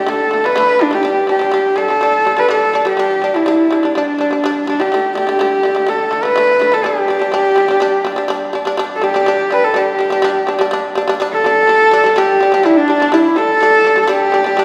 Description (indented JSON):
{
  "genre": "mongolian traditional, Mongolian folk",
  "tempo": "124 BPM",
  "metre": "4/4",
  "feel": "straight",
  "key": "G gong mode",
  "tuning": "A4 = 437 Hz",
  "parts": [
    { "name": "clear horsehead fiddle", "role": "melody", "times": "0.0-14.6 s", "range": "D4 to B4", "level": "-15 LUFS", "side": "equal", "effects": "none" },
    { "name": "shamisen", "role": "arpeggios", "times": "0.0-14.6 s", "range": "D3 to D4", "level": "-20 LUFS", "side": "equal", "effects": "none" }
  ],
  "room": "wet recital hall reverb, RT60 1.7 s",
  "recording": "recorded in a church or concert hall",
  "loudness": "-14 LUFS",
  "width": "mono",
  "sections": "0.0-8.8 A section; 8.8-14.6 B section",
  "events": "none",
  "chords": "0.0 D5; 1.1 G5; 4.9 D5; 6.8 G5",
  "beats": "0.09 0.57 | 1.05 1.54 2.02 2.50 | 2.99 3.47 3.95 4.43 | 4.92 5.40 5.88 6.37 | 6.85 7.33 7.81 8.30 | 8.78 9.26 9.75 10.23 | 10.71 11.20 11.68 12.16 | 12.65 13.13 13.62 14.10 | 14.59"
}